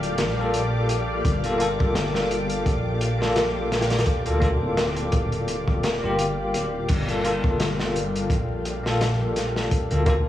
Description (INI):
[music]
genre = trip hop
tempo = 85 BPM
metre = 4/4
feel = swing 56% on 16ths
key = G minor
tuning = A4 = 440 Hz
[part]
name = bell-like tine electric piano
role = accompaniment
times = 0.0-10.3 s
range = Bb3 to A4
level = -26 LUFS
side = left 1 dB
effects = tremolo, tape echo
[part]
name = string machine, cellos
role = sustained chords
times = 0.0-10.3 s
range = G4 to D6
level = -31 LUFS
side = left 1 dB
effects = ensemble chorus
[part]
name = dark detuned saw bass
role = bass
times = 0.0-10.2 s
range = D1 to D2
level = -26 LUFS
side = equal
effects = none
[part]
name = crunchy breakbeat drum kit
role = drums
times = 0.0-10.3 s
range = crash cymbal, hi-hat, kick drum, snare drum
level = -26 LUFS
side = equal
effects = none
[sound]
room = light reverb, small room ambience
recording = echo-heavy mix, vinyl crackle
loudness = -21 LUFS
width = side -12 dB against mid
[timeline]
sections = 0.0-6.9 A section; 6.9-10.3 A section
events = none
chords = 0.0 Gm7